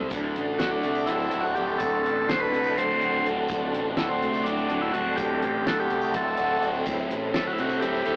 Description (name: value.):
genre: psychedelic rock.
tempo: 249 BPM (eighths).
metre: 7/8.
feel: straight.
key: D mixolydian.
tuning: A4 = 440 Hz.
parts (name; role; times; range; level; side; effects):
tonewheel organ; sustained chords; 0.0-8.2 s; A4 to B5; -35 LUFS; equal; slow rotary speaker, chorus vibrato.
fuzz guitar; riff; 0.0-8.2 s; D2 to A4; -30 LUFS; equal; distortion, phaser.
growling fingered electric bass; bass; 0.0-8.2 s; D1 to C2; -39 LUFS; equal; overdrive.
damped 70s drum kit; drums; 0.1-8.2 s; hi-hat, kick drum, snare drum; -34 LUFS; equal; none.
tambourine; percussion; 0.1-8.0 s; none; -56 LUFS; equal; none.
overdriven combo organ; melody; 0.6-8.2 s; C4 to C5; -29 LUFS; equal; none.
room: moderate studio reverb, RT60 0.5 s.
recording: rough rehearsal-room recording, tube saturation, AM radio sound.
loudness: -26 LUFS.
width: mono.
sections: 0.1-8.2 A section.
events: none.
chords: 0.1 D7; 6.9 Amadd9/D.